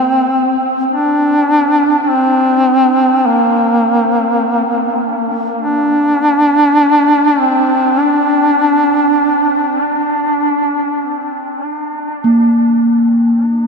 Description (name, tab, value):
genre	ambient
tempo	free time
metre	none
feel	none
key	unclear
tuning	A4 = 440 Hz
part	warm duduk	melody	0.0-9.8 s	Bb3 to D4	-11 LUFS	equal	analog delay
part	gamelan-type bronze metallophone	arpeggios	0.0-1.5, 12.2-13.7 s	Bb3 to Bb4	-9 LUFS	equal	analog delay
room	wet huge ambient reverb, RT60 7.4 s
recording	dreamy mix soaked in reverb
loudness	-10 LUFS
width	side -4 dB against mid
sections	0.0-13.7 A section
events	none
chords	none